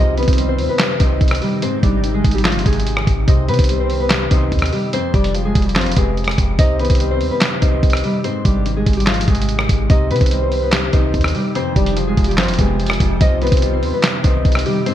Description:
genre	hip hop, trap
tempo	145 BPM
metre	4/4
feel	half-time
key	C harmonic minor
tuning	A4 = 440 Hz
part	nylon-string guitar	melody	0.0-14.9 s	F3 to Eb5	-21 LUFS	equal	low-pass filter, digital delay
part	soft octave-layered synth lead	second line	0.0-14.8 s	B4 to Eb5	-26 LUFS	right 1 dB	chorus, phaser, digital delay
part	dark baby grand piano	accompaniment	0.0-14.9 s	F2 to G3	-24 LUFS	left 3 dB	wide subtle chorus, low-pass filter
part	granular cloud pad	sustained chords	0.0-3.3, 10.8-14.9 s	C3 to F4	-28 LUFS	right 2 dB	built-in reverb
part	clean 808-style bass	bass	0.0-14.6 s	F1 to C3	-19 LUFS	equal	none
part	lo-fi sampler-style drum kit	drums	0.2-14.9 s	handclaps, hi-hat, kick drum, rim click, snare drum	-17 LUFS	equal	gated reverb
room	light reverb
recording	bright 1980s-style digital production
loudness	-14 LUFS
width	side -11 dB against mid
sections	0.0-3.3 A section; 3.3-14.9 A section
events	none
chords	0.0 Cm; 1.6 Ab; 3.3 Cm; 4.9 Fm; 6.6 Cm; 8.2 Ab; 9.9 Cm; 11.6 Fm; 13.2 Cm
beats	0.38 0.80 1.21 | 1.62 2.04 2.45 2.86 | 3.28 3.69 4.11 4.52 | 4.93 5.35 5.76 6.17 | 6.59 7.00 7.42 7.83 | 8.24 8.66 9.07 9.48 | 9.90 10.31 10.73 11.14 | 11.55 11.97 12.38 12.79 | 13.21 13.62 14.04 14.45 | 14.86

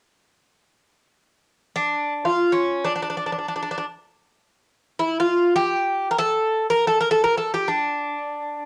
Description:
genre	greek folk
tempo	free time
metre	none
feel	none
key	D harmonic minor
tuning	A4 = 440 Hz
part	Greek bouzouki	melody	1.8-8.7 s	C#4 to Bb4	-22 LUFS	equal	none
room	moderate studio reverb, RT60 0.6 s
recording	home recording on cassette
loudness	-22 LUFS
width	mono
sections	1.2-8.7 A section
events	none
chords	none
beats	free time

